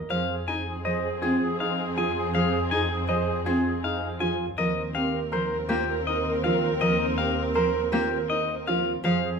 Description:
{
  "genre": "classical, minimalist pattern music",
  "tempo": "161 BPM",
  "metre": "6/4",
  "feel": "straight",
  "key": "F minor",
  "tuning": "A4 = 441 Hz",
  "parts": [
    { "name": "warm concert grand piano", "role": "arpeggios", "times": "0.0-9.3 s", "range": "Eb4 to C5", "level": "-31 LUFS", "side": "right 4 dB", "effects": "none" },
    { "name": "clean electric guitar", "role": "melody", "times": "0.1-9.3 s", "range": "G4 to Ab5", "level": "-29 LUFS", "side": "left 8 dB", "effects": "none" },
    { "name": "warm clarinet", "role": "second line", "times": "0.1-9.4 s", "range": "Ab4 to Bb4", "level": "-32 LUFS", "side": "right 4 dB", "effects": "none" },
    { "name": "warm cello", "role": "accompaniment", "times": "0.1-9.2 s", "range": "F3 to Eb4", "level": "-29 LUFS", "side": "equal", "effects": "none" },
    { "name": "warm symphonic string section", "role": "sustained chords", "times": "0.1-9.4 s", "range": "C4 to Bb4", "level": "-33 LUFS", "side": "left 1 dB", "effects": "none" },
    { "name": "warm symphonic double bass section", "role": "bass", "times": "0.1-9.4 s", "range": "Eb2 to F2", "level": "-32 LUFS", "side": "right 1 dB", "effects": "none" }
  ],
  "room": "wet stone room reverb, RT60 1.1 s",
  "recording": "none",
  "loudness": "-23 LUFS",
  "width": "side -5 dB against mid",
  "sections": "0.1-9.4 A section",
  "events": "none",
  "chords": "0.1 Fm; 4.6 Cm7/Eb",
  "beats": "| 0.11 0.48 0.85 1.23 1.60 1.97 | 2.34 2.71 3.09 3.46 3.83 4.21 | 4.58 4.95 5.32 5.70 6.07 6.44 | 6.82 7.19 7.56 7.93 8.30 8.68 | 9.05"
}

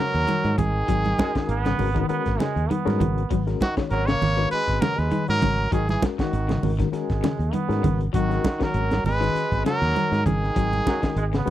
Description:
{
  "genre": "afrobeat",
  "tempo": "99 BPM",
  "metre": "4/4",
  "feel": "swing 55% on 16ths",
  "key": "G# minor",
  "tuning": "A4 = 440 Hz",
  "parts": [
    { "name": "clear trumpet", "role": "melody", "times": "0.0-11.4 s", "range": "F#4 to C#5", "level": "-26 LUFS", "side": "equal", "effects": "none" },
    { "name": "growling trombone", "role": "second line", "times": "0.0-11.4 s", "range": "D#3 to A#3", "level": "-31 LUFS", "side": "right 5 dB", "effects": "none" },
    { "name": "reed electric piano", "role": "accompaniment", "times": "0.0-11.5 s", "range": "G#3 to C#5", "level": "-30 LUFS", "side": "left 8 dB", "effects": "overdrive, fast tremolo" },
    { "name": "electric guitar at the edge of break-up", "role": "arpeggios", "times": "0.0-11.5 s", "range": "C#3 to F#3", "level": "-30 LUFS", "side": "left 8 dB", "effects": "lush chorus" },
    { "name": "fingered electric bass", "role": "bass", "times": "0.1-11.5 s", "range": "G#1 to G#2", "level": "-24 LUFS", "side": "equal", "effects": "none" },
    { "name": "crunchy breakbeat drum kit", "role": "drums", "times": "0.1-11.5 s", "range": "hi-hat, kick drum, snare drum", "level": "-28 LUFS", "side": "equal", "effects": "none" },
    { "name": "congas", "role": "percussion", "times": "0.3-11.5 s", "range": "none", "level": "-27 LUFS", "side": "right 4 dB", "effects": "none" },
    { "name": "brilliant bass trombone", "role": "second line", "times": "1.2-11.5 s", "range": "F#3 to B3", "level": "-30 LUFS", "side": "right 7 dB", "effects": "none" }
  ],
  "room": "small room ambience",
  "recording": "dry, close 1970s-style studio recording",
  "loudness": "-20 LUFS",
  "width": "side -13 dB against mid",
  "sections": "0.0-11.5 A section",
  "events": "none",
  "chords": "0.0 G#m9",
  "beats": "0.28 | 0.88 1.49 2.09 2.70 | 3.30 3.91 4.51 5.12 | 5.72 6.33 6.93 7.54 | 8.14 8.75 9.35 9.96 | 10.56 11.17"
}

